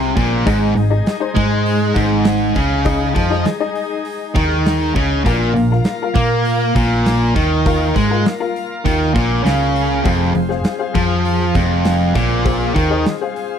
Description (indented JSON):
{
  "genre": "classic rock",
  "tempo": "100 BPM",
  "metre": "4/4",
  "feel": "straight",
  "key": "unclear",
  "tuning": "A4 = 441 Hz",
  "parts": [
    { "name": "bright tonewheel organ", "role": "sustained chords", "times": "0.0-13.6 s", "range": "Ab3 to F5", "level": "-30 LUFS", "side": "equal", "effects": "overdrive, slow rotary speaker" },
    { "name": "distorted electric guitar", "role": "riff", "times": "0.0-13.0 s", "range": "F2 to Bb3", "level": "-19 LUFS", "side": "left 10 dB", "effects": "overdrive" },
    { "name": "distorted electric guitar", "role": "riff", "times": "0.0-13.0 s", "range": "F2 to Bb3", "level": "-19 LUFS", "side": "right 12 dB", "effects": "overdrive" },
    { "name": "hollow-body short-scale picked electric bass", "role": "bass", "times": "0.0-13.0 s", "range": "F1 to Bb2", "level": "-19 LUFS", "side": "equal", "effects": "none" },
    { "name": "big rock drum kit", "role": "drums", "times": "0.2-13.5 s", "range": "hi-hat, kick drum, snare drum", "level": "-21 LUFS", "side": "right 1 dB", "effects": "none" },
    { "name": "honky-tonk upright piano", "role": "accompaniment", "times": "0.5-13.6 s", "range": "Eb4 to F5", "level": "-23 LUFS", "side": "left 9 dB", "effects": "none" }
  ],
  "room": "studio reverb",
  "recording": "dry, close 1970s-style studio recording",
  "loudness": "-14 LUFS",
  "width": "side -8 dB against mid",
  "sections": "0.0-13.6 A section",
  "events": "none",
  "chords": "0.5 Ab5; 5.3 Bb5; 10.1 Fm"
}